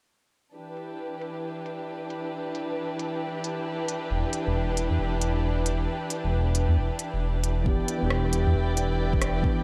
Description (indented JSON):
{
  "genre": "future garage",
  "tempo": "135 BPM",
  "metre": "4/4",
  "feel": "swing 62% on 16ths",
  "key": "E minor",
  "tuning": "A4 = 440 Hz",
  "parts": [
    { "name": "dark chamber string section", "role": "sustained chords", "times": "0.5-9.6 s", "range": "E3 to G5", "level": "-33 LUFS", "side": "equal", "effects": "sidechain pumping" },
    { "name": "organic electronic drum kit", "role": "drums", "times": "0.8-9.3 s", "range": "hi-hat, rim click", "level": "-36 LUFS", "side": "equal", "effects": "low-pass filter on hats, low-pass filter on snare, low-pass filter on room" },
    { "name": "dark detuned saw bass", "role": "bass", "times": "4.1-9.4 s", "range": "E1 to E2", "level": "-28 LUFS", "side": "equal", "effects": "tube saturation, sidechain pumping" },
    { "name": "muted felt-like synth keys", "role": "accompaniment", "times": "7.6-9.6 s", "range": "E3 to G4", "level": "-32 LUFS", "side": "equal", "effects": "chorus, sidechain pumping, analog delay" },
    { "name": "electronic kick drum", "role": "drums", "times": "7.7-9.6 s", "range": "none", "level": "-28 LUFS", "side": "equal", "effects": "none" }
  ],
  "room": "moderate huge ambient reverb, RT60 7.3 s",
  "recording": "dreamy mix soaked in reverb",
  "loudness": "-28 LUFS",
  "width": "mono",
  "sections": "0.6-7.7 A section; 7.7-9.6 B section",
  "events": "none",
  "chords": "0.6 Em7",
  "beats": "| 0.55 0.99 1.44 1.88 | 2.33 2.77 3.22 3.66 | 4.11 4.55 5.00 5.44 | 5.88 6.33 6.77 7.22 | 7.66 8.11 8.55 8.99 | 9.44"
}